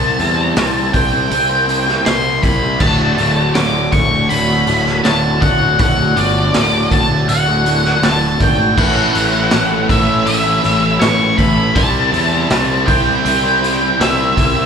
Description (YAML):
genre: quiet-loud alternative rock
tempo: 80 BPM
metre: 4/4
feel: straight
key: D major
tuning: A4 = 442 Hz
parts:
  - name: octave-fuzz lead guitar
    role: melody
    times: 0.0-14.7 s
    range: D5 to D6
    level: -16 LUFS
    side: left 1 dB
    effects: distortion, slapback echo, digital delay
  - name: dark chamber string section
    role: sustained chords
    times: 0.0-14.7 s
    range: F#3 to E6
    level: -28 LUFS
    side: right 2 dB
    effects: none
  - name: fuzz guitar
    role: riff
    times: 0.0-14.7 s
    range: D2 to C5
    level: -22 LUFS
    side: right 11 dB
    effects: distortion, slapback echo
  - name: overdriven semi-hollow guitar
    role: riff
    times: 0.0-14.7 s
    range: D2 to C5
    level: -22 LUFS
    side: left 10 dB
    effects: slapback echo
  - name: fuzz picked electric bass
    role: bass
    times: 0.0-14.7 s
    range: D1 to E2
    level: -19 LUFS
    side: equal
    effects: overdrive
  - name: raw garage drum kit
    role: drums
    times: 0.2-14.5 s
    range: crash cymbal, hi-hat, kick drum, snare drum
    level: -18 LUFS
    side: equal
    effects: none
  - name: distorted electric guitar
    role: riff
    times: 8.8-14.7 s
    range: A2 to C5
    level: -20 LUFS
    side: equal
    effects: overdrive, slapback echo
room: small room ambience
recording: live gig heard through the venue's PA, club reverb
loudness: -12 LUFS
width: side -6 dB against mid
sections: 0.0-14.7 A section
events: none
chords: 0.0 C; 2.8 D; 8.8 Aadd9; 11.8 Cmaj7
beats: 0.56 1.31 2.06 | 2.81 3.55 4.30 5.05 | 5.79 6.54 7.29 8.03 | 8.78 9.53 10.27 11.02 | 11.76 12.51 13.25 14.00